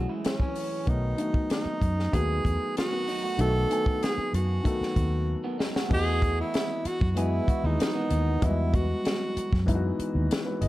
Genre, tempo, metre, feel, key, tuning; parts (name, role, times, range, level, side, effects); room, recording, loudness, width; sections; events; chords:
lush 1970s-style soul; 95 BPM; 4/4; straight; A4 = 439 Hz
dark grand piano; accompaniment; 0.0-10.7 s; D#3 to G#5; -32 LUFS; left 2 dB
electric guitar through a small old amp; riff; 0.0-8.9 s; D#3 to G#4; -36 LUFS; right 3 dB
vintage muted fingered electric bass; bass; 0.0-10.7 s; G1 to F#2; -27 LUFS; equal
compact cocktail drum kit; drums; 0.2-10.7 s; crash cymbal, hi-hat, kick drum, snare drum; -28 LUFS; equal
breathy tenor saxophone; melody; 0.3-9.7 s; C#4 to A4; -30 LUFS; right 2 dB; slapback echo
light reverb, studio ambience; dark, warm production; -24 LUFS; side -16 dB against mid
0.0-5.9 A section; 5.9-10.7 B section
drum fill 5.3-5.9
0.0 F#m7; 0.9 B7; 5.9 Emaj9